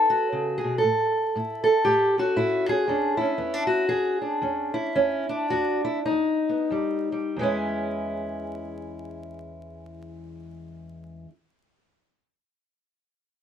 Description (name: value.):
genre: acoustic country blues, solo or duo.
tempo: 89-119 BPM.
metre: 4/4.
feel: swing 61% on 8ths.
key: E mixolydian.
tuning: A4 = 440 Hz.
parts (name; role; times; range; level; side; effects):
fingerpicked steel-string acoustic guitar; solo; 0.0-11.3 s; E2 to A4; -23 LUFS; equal; none.
room: light reverb.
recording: close, detailed microphones, vinyl crackle.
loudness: -22 LUFS.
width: side -8 dB against mid.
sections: 0.0-7.4 A section; 7.4-12.7 B section.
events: slowing down 2.9-7.4; stop 2.9-6.7.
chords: 0.0 B7(no3); 0.8 A; 2.9 E13; 6.7 Fsus2; 7.4 E6.